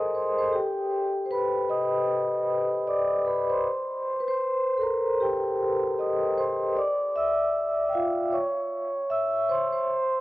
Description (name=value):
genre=hip hop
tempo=77 BPM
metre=4/4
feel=swing 62% on 16ths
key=unclear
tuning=A4 = 440 Hz
part: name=vibraphone with soft mallets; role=solo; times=0.0-10.2 s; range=F4 to E6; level=-24 LUFS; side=equal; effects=cassette tape, low-pass filter, tape echo
room=moderate small room reverb, RT60 0.5 s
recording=worn, warbling old tape, cassette tape, warbly pitch drift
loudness=-24 LUFS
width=side -17 dB against mid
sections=0.0-10.2 A section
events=vibraphone solo 0.0-10.2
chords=0.0 Ab; 0.5 G; 3.7 Cm7; 6.8 Dmadd9; 8.3 C